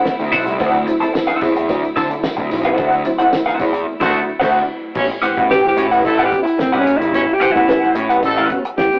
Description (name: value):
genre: funk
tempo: 110 BPM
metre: 4/4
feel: straight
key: unclear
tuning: A4 = 440 Hz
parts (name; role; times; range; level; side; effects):
- electric guitar at the edge of break-up; accompaniment; 0.0-8.8 s; C#4 to A5; -20 LUFS; equal; wah
- warm studio string section; sustained chords; 0.0-4.9 s; F#3 to E4; -28 LUFS; equal; none
- tonewheel organ; stabs; 0.1-9.0 s; A2 to F#4; -26 LUFS; equal; chorus vibrato, slow rotary speaker
- cloth-damped thuddy drum kit; drums; 0.1-9.0 s; crash cymbal, hi-hat, kick drum, snare drum; -28 LUFS; equal; none
- fuzz picked electric bass; bass; 0.2-8.5 s; F#1 to D3; -24 LUFS; equal; overdrive
- tambourine; percussion; 0.6-3.7 s; none; -42 LUFS; equal; none
- clear horn section; second line; 4.0-8.5 s; A3 to C#5; -24 LUFS; equal; none
- breathy alto saxophone; melody; 5.5-9.0 s; C4 to G4; -18 LUFS; equal; none
room: moderate stone room reverb, RT60 1.0 s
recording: rough rehearsal-room recording, tube saturation, AM radio sound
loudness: -16 LUFS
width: mono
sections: 0.0-5.0 A section; 5.0-9.0 B section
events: band accent 2.8-5.0; alto saxophone solo 5.0-9.0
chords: 0.0 D9; 5.0 A13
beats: 0.06 | 0.60 1.15 1.69 2.24 | 2.78 3.33 3.87 4.42 | 4.96 5.50 6.05 6.59 | 7.14 7.68 8.23 8.78